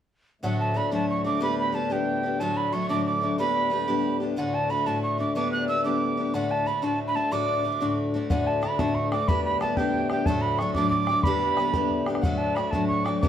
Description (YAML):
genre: celtic folk, Celtic jig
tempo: 122 BPM (dotted quarters)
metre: 6/8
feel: straight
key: D major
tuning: A4 = 435 Hz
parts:
  - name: breathy mellow mid whistle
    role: melody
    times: 0.4-13.3 s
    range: F#5 to F#6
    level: -27 LUFS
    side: right 4 dB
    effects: none
  - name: picked steel-string acoustic guitar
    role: accompaniment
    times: 0.4-13.3 s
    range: D2 to G4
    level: -26 LUFS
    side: left 2 dB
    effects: none
  - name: pedal harmonium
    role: drone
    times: 0.4-13.3 s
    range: D2 to A2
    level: -32 LUFS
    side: left 3 dB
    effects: none
  - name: bodhran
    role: percussion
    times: 8.3-13.3 s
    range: none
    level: -29 LUFS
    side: left 1 dB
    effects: none
room: wet large studio reverb, RT60 1.0 s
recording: band playing live in one room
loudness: -23 LUFS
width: side -9 dB against mid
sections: 0.4-8.3 A section; 8.3-13.3 A section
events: none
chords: 0.4 D; 1.4 G; 2.4 D; 3.4 G; 4.4 D; 5.3 G; 6.3 D; 9.3 G; 10.3 D; 11.3 G; 12.2 D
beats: | 0.42 0.92 | 1.41 1.90 | 2.39 2.89 | 3.38 3.87 | 4.36 4.86 | 5.35 5.84 | 6.33 6.83 | 7.32 7.81 | 8.30 8.79 | 9.29 9.78 | 10.27 10.76 | 11.26 11.75 | 12.24 12.73 | 13.22